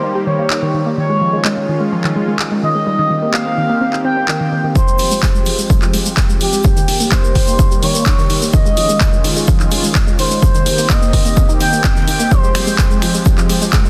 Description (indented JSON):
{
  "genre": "progressive house",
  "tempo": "127 BPM",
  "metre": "4/4",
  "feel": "straight",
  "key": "F minor",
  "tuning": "A4 = 440 Hz",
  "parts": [
    { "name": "expressive synth lead", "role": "melody", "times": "0.0-13.2 s", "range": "G4 to G5", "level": "-22 LUFS", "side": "equal", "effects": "lush chorus, sidechain pumping, digital delay" },
    { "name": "supersaw pad", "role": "sustained chords", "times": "0.0-13.9 s", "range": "Eb3 to G4", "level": "-24 LUFS", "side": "equal", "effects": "sidechain pumping, low-pass filter" },
    { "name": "soft round pluck", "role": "arpeggios", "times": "0.0-13.9 s", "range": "Eb3 to G4", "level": "-22 LUFS", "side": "equal", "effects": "chorus, sidechain pumping, digital delay" },
    { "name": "house drum kit", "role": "drums", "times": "0.5-13.9 s", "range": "cabasa, finger snaps, handclaps, hi-hat", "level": "-23 LUFS", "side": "equal", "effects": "sidechain pumping on perc, sidechain pumping on hats" },
    { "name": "electronic kick drum", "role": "drums", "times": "4.8-13.8 s", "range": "none", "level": "-16 LUFS", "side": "equal", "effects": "none" },
    { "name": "modern studio drum kit", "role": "drums", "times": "4.8-13.8 s", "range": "hi-hat, shaker, snare drum", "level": "-34 LUFS", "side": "equal", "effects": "none" }
  ],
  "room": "light reverb, studio reverb",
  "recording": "dense, heavily limited modern master",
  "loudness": "-14 LUFS",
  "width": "mono",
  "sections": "0.0-4.8 A section; 4.8-13.9 B section",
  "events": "build-up 4.8-13.9; filter sweep on synth pluck 4.8-13.9; filter sweep on supersaw synth 4.8-13.9",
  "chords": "0.0 Eb; 1.0 Dbadd9; 2.9 Cm7; 4.8 Fmadd9; 6.6 Eb; 8.5 Dbadd9; 10.4 Cm7; 12.3 Fmadd9",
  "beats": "0.03 0.50 | 0.98 1.45 1.92 2.39 | 2.87 3.34 3.81 4.28 | 4.76 5.23 5.70 6.17 | 6.64 7.12 7.59 8.06 | 8.54 9.01 9.48 9.95 | 10.43 10.90 11.37 11.84 | 12.31 12.79 13.26 13.73"
}